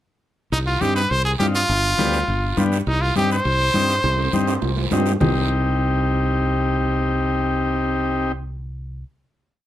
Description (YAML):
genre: latin, cumbia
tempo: 205 BPM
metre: 4/4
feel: straight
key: C harmonic minor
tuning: A4 = 441 Hz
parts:
  - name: brilliant trumpet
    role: melody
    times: 0.5-4.9 s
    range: Eb4 to C5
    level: -21 LUFS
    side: equal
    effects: none
  - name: fingered electric bass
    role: bass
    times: 0.5-9.0 s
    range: G1 to G2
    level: -23 LUFS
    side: equal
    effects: none
  - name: congas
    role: percussion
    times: 0.5-5.3 s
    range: none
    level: -25 LUFS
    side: left 3 dB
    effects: none
  - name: guiro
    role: percussion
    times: 0.5-5.3 s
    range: none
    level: -34 LUFS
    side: right 7 dB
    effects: none
  - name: timbales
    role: percussion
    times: 0.5-5.3 s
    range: none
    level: -30 LUFS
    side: right 4 dB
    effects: none
  - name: combo organ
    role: accompaniment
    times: 0.8-8.3 s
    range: B3 to G4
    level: -22 LUFS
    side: left 2 dB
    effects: none
room: light reverb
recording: lossy compression artefacts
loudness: -18 LUFS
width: side -12 dB against mid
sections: 0.5-5.2 A section; 5.2-7.6 final chord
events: drum fill 4.0-5.2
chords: 0.5 Cm; 1.7 G7; 2.9 Cm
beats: | 0.52 0.82 1.11 1.40 | 1.69 1.99 2.28 2.57 | 2.87 3.16 3.45 3.74 | 4.04 4.33 4.62 4.92 | 5.21 5.50 5.80 6.09 | 6.39 6.68 6.97 7.27